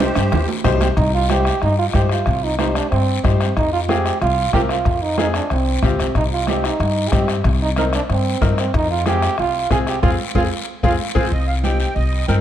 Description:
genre	latin, cumbia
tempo	186 BPM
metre	4/4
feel	straight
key	C minor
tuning	A4 = 439 Hz
part	musette accordion	melody	0.0-0.5, 11.2-12.4 s	G4 to G5	-26 LUFS	right 3 dB	none
part	bright upright piano	accompaniment	0.0-12.4 s	C4 to C5	-24 LUFS	left 4 dB	none
part	upright bass	bass	0.0-12.4 s	C2 to G2	-20 LUFS	equal	none
part	bombo	percussion	0.0-11.2 s	none	-22 LUFS	left 2 dB	none
part	congas	percussion	0.0-12.4 s	none	-27 LUFS	right 7 dB	none
part	guiro	percussion	0.0-12.4 s	none	-31 LUFS	left 7 dB	none
part	timbales and cowbell	percussion	0.0-0.9 s	none	-24 LUFS	right 6 dB	none
part	bright trombone	second line	0.8-11.2 s	C4 to Ab4	-21 LUFS	right 4 dB	none
room	moderate large studio reverb, RT60 1.3 s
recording	none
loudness	-16 LUFS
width	side -11 dB against mid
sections	1.0-11.3 A section; 11.3-12.4 B section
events	drum fill 0.0-1.0; trombone solo 1.0-11.3; band accent 10.0-11.3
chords	0.0 Cm; 3.6 Fm; 6.2 Cm; 8.7 Fm; 11.3 Cm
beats	0.00 0.33 0.65 | 0.97 1.30 1.62 1.95 | 2.27 2.59 2.92 3.24 | 3.56 3.89 4.21 4.54 | 4.86 5.18 5.51 5.83 | 6.15 6.48 6.80 7.12 | 7.45 7.77 8.09 8.41 | 8.74 9.06 9.38 9.71 | 10.03 10.35 10.68 11.00 | 11.32 11.65 11.97 12.29

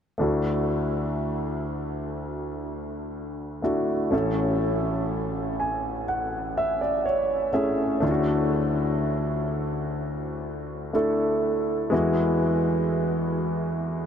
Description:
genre	pop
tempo	62 BPM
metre	4/4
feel	straight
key	unclear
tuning	A4 = 441 Hz
part	clear grand piano	accompaniment	0.2-14.1 s	A1 to G#5	-23 LUFS	equal	none
room	wet huge ambient reverb, RT60 7.2 s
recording	dreamy mix soaked in reverb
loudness	-23 LUFS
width	side -8 dB against mid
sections	0.2-14.1 A section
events	grand piano fill 5.1-8.0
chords	0.2 Dadd9; 4.1 A; 8.0 Dadd9; 11.9 Eadd9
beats	| 0.20 1.18 2.17 3.15 | 4.13 5.11 6.08 7.05 | 8.03 9.00 9.97 10.94 | 11.92 12.90 13.88

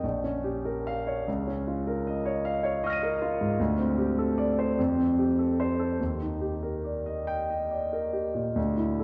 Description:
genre	classical, impressionist solo piano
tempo	44-53 BPM (dotted quarters)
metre	6/8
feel	rubato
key	unclear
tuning	A4 = 439 Hz
part	warm concert grand piano	solo	0.0-9.0 s	Bb1 to Eb7	-28 LUFS	equal	none
room	wet concert hall reverb, RT60 1.8 s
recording	dark, warm production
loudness	-28 LUFS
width	mono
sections	0.0-9.0 A section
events	none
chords	0.0 Bbm6; 1.3 Db69; 3.6 D7sus4; 4.8 Fadd9; 6.0 Ebmaj7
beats	0.03 | 1.27 2.45 | 3.60 4.79 | 6.00 7.29 | 8.57

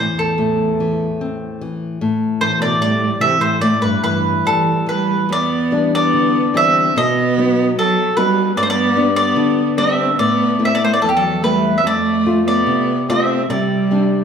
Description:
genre	fado-style ballad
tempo	73 BPM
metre	2/4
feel	rubato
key	A minor, E minor from 5.3 s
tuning	A4 = 440 Hz
part	mandolin	melody	0.0-14.2 s	G4 to E5	-17 LUFS	right 1 dB	none
part	rich cello	second line	0.0-14.2 s	E2 to C4	-20 LUFS	right 4 dB	none
part	nylon-string guitar	accompaniment	0.0-14.2 s	E2 to B4	-19 LUFS	left 4 dB	none
room	wet recital hall reverb, RT60 1.4 s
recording	recorded in a church or concert hall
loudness	-14 LUFS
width	side -7 dB against mid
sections	0.0-5.3 A section; 5.3-14.2 B section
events	none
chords	0.0 Am; 2.0 A5; 5.3 Em7; 7.0 B; 8.6 G; 10.2 Asus2; 11.8 F; 13.5 Csus2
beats	| 0.39 1.22 | 2.02 2.81 | 3.62 4.45 | 5.29 6.13 | 6.96 7.77 | 8.57 9.37 | 10.18 11.01 | 11.84 12.67 | 13.49

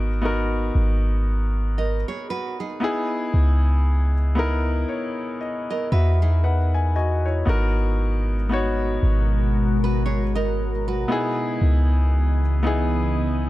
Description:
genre	contemporary R&B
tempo	58 BPM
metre	4/4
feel	swing 58% on 16ths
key	G# minor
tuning	A4 = 440 Hz
part	warm concert grand piano	accompaniment	0.0-13.5 s	B3 to G#5	-26 LUFS	left 2 dB	none
part	clean 808-style bass	bass	0.0-13.5 s	G#1 to E2	-20 LUFS	equal	none
part	nylon-string guitar	arpeggios	1.8-11.4 s	D#4 to D#5	-30 LUFS	right 5 dB	none
part	glassy FM pad	sustained chords	8.4-13.5 s	B2 to D#5	-28 LUFS	left 1 dB	ensemble chorus, built-in reverb
room	small room ambience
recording	dark, warm production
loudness	-19 LUFS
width	side -16 dB against mid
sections	0.0-13.5 A section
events	grand piano fill 4.4-7.5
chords	0.0 G#m9; 2.8 C#m9; 7.5 G#m9; 11.1 C#m9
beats	0.23 1.27 2.30 | 3.33 4.37 5.40 6.44 | 7.47 8.51 9.54 10.58 | 11.61 12.64

